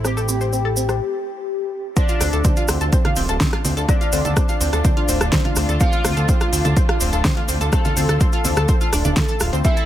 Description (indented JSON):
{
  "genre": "melodic techno",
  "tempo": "125 BPM",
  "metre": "4/4",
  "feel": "straight",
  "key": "D minor",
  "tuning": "A4 = 440 Hz",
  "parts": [
    { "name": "resonant sweep polysynth", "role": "melody", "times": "0.0-9.9 s", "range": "D4 to A4", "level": "-27 LUFS", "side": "left 2 dB", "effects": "chorus, sidechain pumping, digital delay" },
    { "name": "muted studio string section", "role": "sustained chords", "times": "0.0-9.9 s", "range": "D3 to F4", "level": "-30 LUFS", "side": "left 1 dB", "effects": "sidechain pumping" },
    { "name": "analog pluck", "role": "arpeggios", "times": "0.0-9.9 s", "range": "C4 to A5", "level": "-26 LUFS", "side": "equal", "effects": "lush chorus, sidechain pumping, tape echo" },
    { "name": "fat analog bass", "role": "bass", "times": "0.0-9.6 s", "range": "D1 to D2", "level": "-21 LUFS", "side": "equal", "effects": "sidechain pumping" },
    { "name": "deep house drum kit", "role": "drums", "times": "0.0-9.9 s", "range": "congas, hi-hat, rim click, snare drum", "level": "-23 LUFS", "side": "right 1 dB", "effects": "overdrive" },
    { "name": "cabasa", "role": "percussion", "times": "0.0-9.9 s", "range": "none", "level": "-28 LUFS", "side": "right 2 dB", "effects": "none" },
    { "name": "dark detuned synth bell", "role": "second line", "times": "2.0-9.9 s", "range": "D5 to A5", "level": "-31 LUFS", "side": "left 1 dB", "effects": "chorus, sidechain pumping, tape echo" },
    { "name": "electronic kick drum", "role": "drums", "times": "2.0-9.7 s", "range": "none", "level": "-19 LUFS", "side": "equal", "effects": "overdrive" }
  ],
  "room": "digital ambience",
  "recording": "none",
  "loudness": "-16 LUFS",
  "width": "side -12 dB against mid",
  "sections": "0.0-2.0 A section; 2.0-9.9 B section",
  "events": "break 1.0-2.0; drop 2.0-9.9",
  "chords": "0.0 Am; 2.0 Dm7"
}